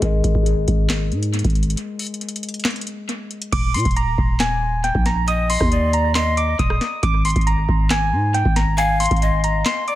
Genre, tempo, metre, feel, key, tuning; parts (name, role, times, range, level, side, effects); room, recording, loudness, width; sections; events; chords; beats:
hip hop, trap; 137 BPM; 4/4; half-time; A4 = 440 Hz
dark concert grand piano; accompaniment; 0.0-3.5 s; Ab3 to Eb5; -27 LUFS; left 6 dB; analog delay
growling 808-style bass; bass; 0.0-9.6 s; Eb1 to Bb2; -20 LUFS; equal
booming analog drum machine; drums; 0.0-10.0 s; crash cymbal, handclaps, hi-hat, kick drum, rim click, snare drum; -21 LUFS; equal; analog delay
soft electric-piano-like synth keys; melody; 3.5-10.0 s; G5 to Eb6; -21 LUFS; right 1 dB; chorus, analog delay
breathy large pan pipes; second line; 5.3-10.0 s; D5 to F5; -24 LUFS; left 4 dB; analog delay
digital ambience; echo-heavy mix; -17 LUFS; side -14 dB against mid
0.0-3.5 A section; 3.5-10.0 B section
break 1.8-3.5
0.0 Absus2; 3.5 Eb5; 7.0 Absus2
| 0.02 0.46 0.90 1.34 | 1.77 2.21 2.65 3.09 | 3.53 3.96 4.40 4.84 | 5.28 5.71 6.15 6.59 | 7.03 7.47 7.91 8.34 | 8.78 9.22 9.66